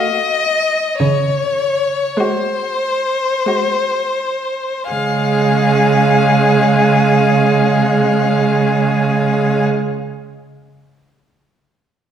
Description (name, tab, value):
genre	classical, slow romantic movement for string quartet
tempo	39-56 BPM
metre	3/4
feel	rubato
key	Db major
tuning	A4 = 444 Hz
part	rich violin	melody	0.0-9.6 s	C5 to F5	-18 LUFS	left 3 dB	none
part	rich violin	second line	0.0-9.6 s	Gb4 to Ab4	-20 LUFS	equal	none
part	rich viola	accompaniment	0.0-9.6 s	Ab3 to A3	-17 LUFS	right 2 dB	none
part	rich cello	bass	1.0-9.6 s	Db3	-17 LUFS	right 5 dB	none
room	wet recital hall reverb, RT60 1.6 s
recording	heard from further back in the room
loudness	-13 LUFS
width	side -9 dB against mid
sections	0.0-4.9 A section; 4.9-8.9 B section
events	slowing down 0.0-4.9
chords	0.0 Gbm; 1.0 Ab7/Db